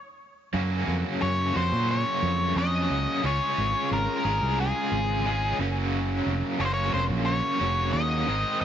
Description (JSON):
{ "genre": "rock", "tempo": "89 BPM", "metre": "4/4", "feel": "straight", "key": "unclear", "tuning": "A4 = 440 Hz", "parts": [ { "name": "overdriven electric guitar", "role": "riff", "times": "0.5-8.6 s", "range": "Gb2 to Ab4", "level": "-28 LUFS", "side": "right 1 dB", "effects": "tremolo" }, { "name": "fingered electric bass", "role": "bass", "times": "0.5-8.6 s", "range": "F1 to Bb2", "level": "-27 LUFS", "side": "right 1 dB", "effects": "none" }, { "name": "octave-fuzz lead guitar", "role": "melody", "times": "1.2-8.6 s", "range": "Ab4 to Eb5", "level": "-28 LUFS", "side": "left 2 dB", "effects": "distortion, tape echo" } ], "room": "little or no reverb", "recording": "1960s-style stereo, nothing above 7.6 kHz", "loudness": "-23 LUFS", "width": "side -9 dB against mid", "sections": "0.5-8.6 A section", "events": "stop 0.0-0.5", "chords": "0.0 N.C.; 0.5 Gbmaj7; 3.2 Dbmaj7; 5.6 Gbmaj7", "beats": "| 0.54 1.22 1.89 2.56 | 3.24 3.91 4.58 5.26 | 5.93 6.60 7.27 7.94 | 8.62" }